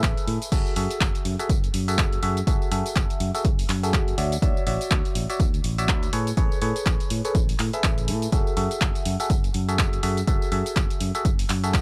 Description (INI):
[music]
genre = piano house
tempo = 123 BPM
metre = 4/4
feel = swing 58% on 16ths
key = F# minor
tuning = A4 = 444 Hz
[part]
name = barking FM electric piano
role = riff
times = 0.0-11.8 s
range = F#4 to E5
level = -31 LUFS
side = equal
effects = phaser, cassette tape, sidechain pumping, tape echo
[part]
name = fingered electric bass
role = bass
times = 0.0-11.8 s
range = F#1 to A2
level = -30 LUFS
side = equal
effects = tube saturation, sidechain pumping
[part]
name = electronic kick drum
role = drums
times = 0.0-11.8 s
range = none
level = -26 LUFS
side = equal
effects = none
[part]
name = punchy analog drum machine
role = drums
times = 0.0-11.8 s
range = crash cymbal, handclaps, hi-hat, tambourine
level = -32 LUFS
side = equal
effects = none
[sound]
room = little or no reverb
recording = dry, gritty hardware recording, transformer saturation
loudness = -24 LUFS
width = mono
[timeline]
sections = 0.0-11.8 A section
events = none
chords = 0.0 Amaj7sus2; 0.5 F#m9; 4.2 Dmaj9; 6.1 Amaj9; 8.3 F#m9